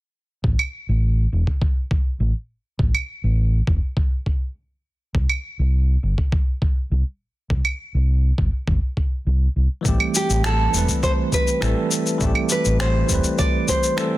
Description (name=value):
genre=sunset chillout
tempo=102 BPM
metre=4/4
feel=straight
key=A minor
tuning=A4 = 440 Hz
part: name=fingered electric bass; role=bass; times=0.4-13.2 s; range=E1 to C2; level=-19 LUFS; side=equal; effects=tube saturation
part: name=electronic kick drum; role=drums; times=0.4-13.8 s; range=none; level=-21 LUFS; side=equal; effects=studio reverb
part: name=electronic claves, shaker and finger snaps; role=drums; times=0.6-14.1 s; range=none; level=-25 LUFS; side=right 1 dB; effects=studio reverb, soft clipping on snare
part: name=bell-like tine electric piano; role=accompaniment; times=9.8-14.2 s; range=E3 to B4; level=-23 LUFS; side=right 1 dB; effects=auto-pan, ping-pong delay
part: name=nylon-string guitar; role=melody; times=10.2-14.2 s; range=G4 to D5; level=-23 LUFS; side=right 1 dB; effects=ping-pong delay
room=little or no reverb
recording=dense, heavily limited modern master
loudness=-18 LUFS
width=side -17 dB against mid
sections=0.4-14.2 A section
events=none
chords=0.4 A5; 5.2 C5; 9.9 Am7